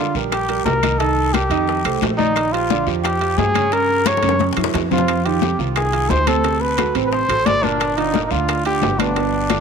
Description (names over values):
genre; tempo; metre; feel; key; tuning
Afro-Cuban jazz; 176 BPM; 4/4; straight; unclear; A4 = 439 Hz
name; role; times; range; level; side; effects
mellow trumpet; melody; 0.0-9.6 s; D4 to D5; -19 LUFS; left 1 dB; none
warm grand piano; accompaniment; 0.0-9.6 s; Bb2 to Eb5; -22 LUFS; right 14 dB; none
upright bass; bass; 0.1-9.6 s; G1 to G2; -24 LUFS; left 1 dB; none
congas; percussion; 0.1-9.6 s; none; -24 LUFS; left 15 dB; none
bongos; percussion; 0.2-9.6 s; none; -28 LUFS; left 15 dB; none
guiro; percussion; 0.2-9.6 s; none; -33 LUFS; left 16 dB; none
claves; percussion; 0.3-9.6 s; none; -33 LUFS; left 17 dB; none
timbales; percussion; 0.3-9.6 s; none; -28 LUFS; right 13 dB; none
room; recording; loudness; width
moderate plate reverb, RT60 3.3 s; 1960s-style stereo with parts hard left and right; -16 LUFS; side -6 dB against mid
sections
0.0-9.6 A section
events
drum fill 4.1-5.1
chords
0.0 Ebmaj7; 1.0 Cm7; 1.7 F7; 2.4 Bb6; 3.7 Gm7b5; 4.4 F#5; 5.1 Fm9; 6.4 D7b13; 7.8 Gm7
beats
0.33 0.67 | 1.01 1.35 1.69 2.03 | 2.37 2.71 3.05 3.39 | 3.73 4.07 4.41 4.75 | 5.09 5.43 5.77 6.11 | 6.45 6.79 7.13 7.47 | 7.80 8.14 8.48 8.82 | 9.16 9.50